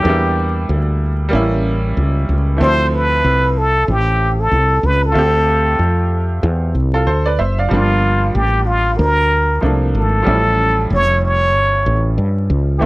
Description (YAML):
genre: hip hop, jazz-hop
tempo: 94 BPM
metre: 4/4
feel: swing 60% on 16ths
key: unclear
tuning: A4 = 442 Hz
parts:
  - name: trumpet with plunger mute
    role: melody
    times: 0.0-12.9 s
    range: F4 to C#5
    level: -16 LUFS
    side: equal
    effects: none
  - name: bright upright piano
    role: accompaniment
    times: 0.0-12.9 s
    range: E3 to F5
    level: -21 LUFS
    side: right 1 dB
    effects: none
  - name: woody fretless electric bass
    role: bass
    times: 0.0-12.9 s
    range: F1 to G2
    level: -16 LUFS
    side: equal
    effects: none
room: light reverb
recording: vinyl crackle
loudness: -13 LUFS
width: side -20 dB against mid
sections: 0.0-7.7 A section; 7.7-12.9 B section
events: none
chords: 0.1 Em7b5; 1.3 A7b9; 2.6 Dm9; 7.7 Gm9; 10.3 A7b13